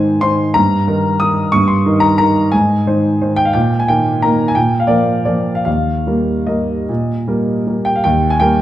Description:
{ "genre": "classical, piano waltz", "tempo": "141-192 BPM", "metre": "3/4", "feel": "rubato", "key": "Eb major", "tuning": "A4 = 442 Hz", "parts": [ { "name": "warm grand piano", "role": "solo", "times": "0.0-8.6 s", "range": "Eb2 to Eb6", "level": "-12 LUFS", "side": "equal", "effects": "none" } ], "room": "moderate recital hall reverb, RT60 1.4 s", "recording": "dark, warm production", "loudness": "-12 LUFS", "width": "side -13 dB against mid", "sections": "0.0-8.0 A section", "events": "none", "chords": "0.0 Ab; 0.5 Eb/G; 2.5 Ab; 3.5 Eb/Bb; 4.6 Bb; 5.7 Eb", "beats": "0.22 | 0.55 0.87 1.20 | 1.52 1.85 2.19 | 2.53 2.87 3.21 | 3.55 3.89 4.23 | 4.56 4.89 5.27 | 5.66 6.07 6.48 | 6.89 7.28 7.67 | 8.04 8.40" }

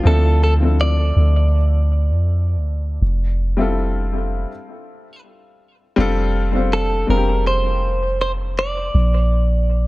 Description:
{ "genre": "contemporary R&B", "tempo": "81 BPM", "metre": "4/4", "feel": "swing 54% on 16ths", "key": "unclear", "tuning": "A4 = 441 Hz", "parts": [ { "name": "direct-recorded clean electric guitar", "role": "melody", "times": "0.0-9.9 s", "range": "A4 to D5", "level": "-23 LUFS", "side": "right 1 dB", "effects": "analog delay" }, { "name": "warm baby grand piano", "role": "accompaniment", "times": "0.0-9.0 s", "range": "F3 to C5", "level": "-22 LUFS", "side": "left 3 dB", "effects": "analog delay" }, { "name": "soft 808-style bass", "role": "bass", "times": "0.0-9.9 s", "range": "F1 to F2", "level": "-17 LUFS", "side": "equal", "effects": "none" } ], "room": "small room ambience", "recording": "echo-heavy mix", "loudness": "-16 LUFS", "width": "side -19 dB against mid", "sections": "0.0-6.0 A section; 6.0-9.9 B section", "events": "stop 4.5-6.0", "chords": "0.1 Dm7; 3.0 Fmaj7; 5.2 N.C.; 6.0 F69; 8.9 Bb", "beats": "| 0.05 0.79 1.53 2.27 | 3.01 3.75 4.50 5.24 | 5.98 6.72 7.46 8.20 | 8.94 9.68" }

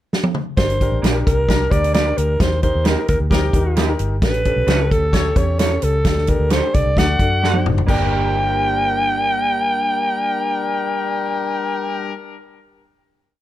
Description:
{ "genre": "uptempo 1960s-style soul", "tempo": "131 BPM", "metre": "4/4", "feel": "straight", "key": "G harmonic minor", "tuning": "A4 = 444 Hz", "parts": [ { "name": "natural country drum kit", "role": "drums", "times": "0.1-8.0 s", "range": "crash cymbal, hi-hat, kick drum, snare drum, toms", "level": "-19 LUFS", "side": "equal", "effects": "none" }, { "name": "raspy alto saxophone", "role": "melody", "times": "0.6-12.1 s", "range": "G4 to G5", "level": "-20 LUFS", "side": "equal", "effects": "none" }, { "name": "warm upright piano", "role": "accompaniment", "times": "0.6-12.2 s", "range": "C#4 to C5", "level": "-27 LUFS", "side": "left 5 dB", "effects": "plate reverb" }, { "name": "vintage muted fingered electric bass", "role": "bass", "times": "0.6-12.1 s", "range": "F#1 to F#2", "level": "-20 LUFS", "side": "equal", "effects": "none" }, { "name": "electric guitar through a small old amp", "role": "stabs", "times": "1.0-12.2 s", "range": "G3 to Bb4", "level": "-26 LUFS", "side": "right 4 dB", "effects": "lush chorus, plate reverb" }, { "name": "clear horn section", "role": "second line", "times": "1.5-12.1 s", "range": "G3 to D5", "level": "-26 LUFS", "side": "left 7 dB", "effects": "tape echo" } ], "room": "light reverb", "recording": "dark, warm production", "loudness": "-16 LUFS", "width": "side -13 dB against mid", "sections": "0.0-0.6 pickup bar; 0.6-7.9 verse; 7.9-11.5 final chord", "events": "drum fill 0.1-0.6, 7.4-7.9", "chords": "0.0 N.C.; 0.6 Gm; 2.4 Eb; 4.2 A7; 6.1 Dsus4; 7.0 D; 7.9 Gm", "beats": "0.12 | 0.57 1.03 1.49 1.94 | 2.40 2.86 3.31 3.77 | 4.23 4.68 5.14 5.60 | 6.05 6.51 6.97 7.42 | 7.88 8.34 8.80 9.25 | 9.71 10.16 10.62 11.08" }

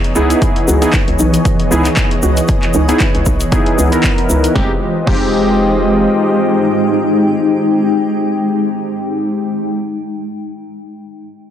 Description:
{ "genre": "deep house", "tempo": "116 BPM", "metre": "4/4", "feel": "swing 55% on 16ths", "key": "unclear", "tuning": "A4 = 441 Hz", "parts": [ { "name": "warm analog pad", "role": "sustained chords", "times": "0.0-9.3 s", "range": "Fb3 to Eb5", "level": "-20 LUFS", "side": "left 1 dB", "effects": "chorus, sidechain pumping" }, { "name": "punchy analog drum machine", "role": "drums", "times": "0.0-5.2 s", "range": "crash cymbal, handclaps, hi-hat, snare drum", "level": "-22 LUFS", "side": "equal", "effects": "none" }, { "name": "granular cloud pad", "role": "texture", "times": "0.3-9.4 s", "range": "Fb3 to G5", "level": "-18 LUFS", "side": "left 1 dB", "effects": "built-in reverb, sidechain pumping" }, { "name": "warbly dusty pluck", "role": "arpeggios", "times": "0.2-5.2 s", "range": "Cb4 to Gb4", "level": "-24 LUFS", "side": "right 2 dB", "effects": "none" }, { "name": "warm analog keys", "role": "stabs", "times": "0.2-9.8 s", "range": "Ab3 to Bb4", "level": "-17 LUFS", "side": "equal", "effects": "chorus, sidechain pumping, low-pass filter, analog delay" }, { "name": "hollow knocking FM bass", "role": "bass", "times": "0.2-6.1 s", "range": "F1 to Db2", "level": "-17 LUFS", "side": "equal", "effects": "sidechain pumping" }, { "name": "tube shaker", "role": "percussion", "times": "0.2-4.5 s", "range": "none", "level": "-25 LUFS", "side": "left 3 dB", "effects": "none" }, { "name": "electronic kick drum", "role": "drums", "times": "0.4-5.2 s", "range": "none", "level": "-16 LUFS", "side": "equal", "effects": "none" } ], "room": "moderate plate reverb, RT60 1.8 s", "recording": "dense, heavily limited modern master", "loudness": "-11 LUFS", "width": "side -9 dB against mid", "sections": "0.0-4.6 A section; 4.6-8.7 B section", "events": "none", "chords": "0.0 Dbm9; 4.6 Fm9", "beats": "| 0.42 0.94 1.45 1.97 | 2.49 3.00 3.52 4.04 | 4.55 5.07 5.59 6.11 | 6.62 7.14 7.66 8.18" }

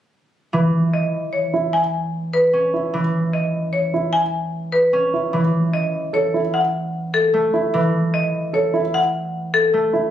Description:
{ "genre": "classical, minimalist pattern music", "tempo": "150 BPM", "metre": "6/4", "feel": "straight", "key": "unclear", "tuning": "A4 = 441 Hz", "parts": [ { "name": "concert harp", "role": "accompaniment", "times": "0.5-10.1 s", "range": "E3 to C#4", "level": "-22 LUFS", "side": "right 1 dB", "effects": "none" }, { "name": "marimba with hard mallets", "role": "melody", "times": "0.9-9.8 s", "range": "A4 to G#5", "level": "-20 LUFS", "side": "left 2 dB", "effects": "none" }, { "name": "dark grand piano", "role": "arpeggios", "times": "1.5-10.1 s", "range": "E4 to A4", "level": "-22 LUFS", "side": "right 4 dB", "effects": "none" } ], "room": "light reverb", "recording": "recorded on a phone in the room, club reverb", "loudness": "-17 LUFS", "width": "side -10 dB against mid", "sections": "0.5-10.1 A section", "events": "none", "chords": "0.5 N.C.; 5.3 F#m7/E (rootless)", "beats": "| 0.54 0.94 1.33 1.74 2.13 2.54 | 2.94 3.33 3.73 4.13 4.54 4.93 | 5.33 5.74 6.13 6.54 6.93 7.33 | 7.74 8.13 8.54 8.94 9.34 9.73" }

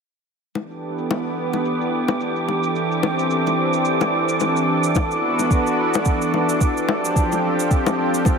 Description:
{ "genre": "sunset chillout", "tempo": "109 BPM", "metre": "4/4", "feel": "swing 58% on 16ths", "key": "unclear", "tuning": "A4 = 440 Hz", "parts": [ { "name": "shaker", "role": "drums", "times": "0.5-8.4 s", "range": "none", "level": "-33 LUFS", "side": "right 5 dB", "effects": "overdrive, low-pass filter on perc" }, { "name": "lush unison pad", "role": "sustained chords", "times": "0.6-8.4 s", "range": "E3 to A4", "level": "-20 LUFS", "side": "equal", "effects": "chorus" }, { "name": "bongos", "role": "percussion", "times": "0.6-8.4 s", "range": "none", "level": "-25 LUFS", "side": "left 6 dB", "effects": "none" }, { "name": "wind-like tuned noise texture", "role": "texture", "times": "1.2-8.4 s", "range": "D6", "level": "-26 LUFS", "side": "right 2 dB", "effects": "built-in reverb" }, { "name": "electronic kick drum", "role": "drums", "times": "5.0-8.4 s", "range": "none", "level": "-19 LUFS", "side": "right 1 dB", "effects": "overdrive" } ], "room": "moderate lush hall reverb, RT60 2.3 s", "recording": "none", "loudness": "-18 LUFS", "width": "side -5 dB against mid", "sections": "0.6-8.4 A section", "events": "none", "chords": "0.6 A9sus4; 2.8 D9sus4; 5.0 E9sus4; 6.9 G9sus4", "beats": "| 0.55 1.10 1.65 2.20 | 2.75 3.30 3.85 4.41 | 4.96 5.51 6.06 6.61 | 7.16 7.71 8.26" }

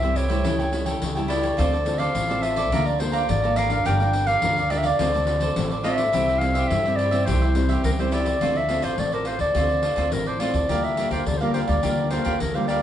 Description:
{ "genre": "samba and choro", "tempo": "105 BPM", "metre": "4/4", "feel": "straight", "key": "D minor from 8.4 s", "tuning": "A4 = 440 Hz", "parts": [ { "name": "mellow clarinet", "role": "melody", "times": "0.0-12.8 s", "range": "Bb4 to G5", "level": "-24 LUFS", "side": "left 1 dB", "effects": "none" }, { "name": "cavaquinho", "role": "accompaniment", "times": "0.0-12.8 s", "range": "E4 to Bb5", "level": "-28 LUFS", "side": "right 4 dB", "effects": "none" }, { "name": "nylon-string guitar", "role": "accompaniment", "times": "0.0-12.8 s", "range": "G2 to Bb4", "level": "-28 LUFS", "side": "left 1 dB", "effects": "none" }, { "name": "upright bass", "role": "bass", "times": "0.0-12.8 s", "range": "G1 to G2", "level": "-26 LUFS", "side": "equal", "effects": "none" }, { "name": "pandeiro", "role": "percussion", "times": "0.0-12.8 s", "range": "none", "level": "-30 LUFS", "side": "left 3 dB", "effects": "none" } ], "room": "wet studio reverb, RT60 0.7 s", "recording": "band playing live in one room, nothing above 10.9 kHz", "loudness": "-20 LUFS", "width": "side -10 dB against mid", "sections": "0.0-8.4 A section; 8.4-12.8 B section", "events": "none", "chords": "0.5 A7/C#; 1.6 Dm7; 2.7 Bbmaj7/D; 3.9 Gm7; 5.0 Dm7; 6.1 C; 8.4 Dm7; 10.7 Gm7/D", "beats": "0.45 1.02 | 1.59 2.15 2.72 3.29 | 3.86 4.43 5.00 5.57 | 6.13 6.70 7.27 7.84 | 8.41 8.98 9.55 10.13 | 10.70 11.27 11.84 12.41" }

